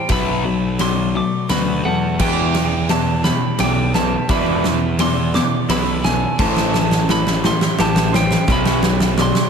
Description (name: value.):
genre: post-rock.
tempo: 86 BPM.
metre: 3/4.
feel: straight.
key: E minor.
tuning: A4 = 442 Hz.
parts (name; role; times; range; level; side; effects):
lightly driven lead guitar; melody; 0.0-9.5 s; F#5 to D6; -23 LUFS; right 2 dB; slapback echo.
electric guitar through a small old amp; arpeggios; 0.0-9.5 s; A4 to E5; -30 LUFS; right 6 dB; analog chorus, slapback echo.
semi-hollow electric guitar; arpeggios; 0.0-9.5 s; E2 to G4; -28 LUFS; equal; none.
overdriven electric guitar; riff; 0.0-9.5 s; E2 to B3; -21 LUFS; left 9 dB; none.
fuzz picked electric bass; bass; 0.1-9.3 s; A1 to E2; -22 LUFS; right 1 dB; overdrive.
huge arena drum kit; drums; 0.1-9.5 s; crash cymbal, kick drum, ride cymbal, snare drum; -20 LUFS; right 1 dB; none.
raw garage guitar; riff; 2.2-9.5 s; A2 to E4; -24 LUFS; right 15 dB; overdrive, spring reverb.
room: light reverb, studio reverb.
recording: none.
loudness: -15 LUFS.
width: side -6 dB against mid.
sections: 0.0-9.5 A section.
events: build-up 0.0-9.5; drum fill 0.0-9.5.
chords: 0.1 Bm7; 2.2 Em; 4.3 E5; 6.4 Am7; 8.5 Bm.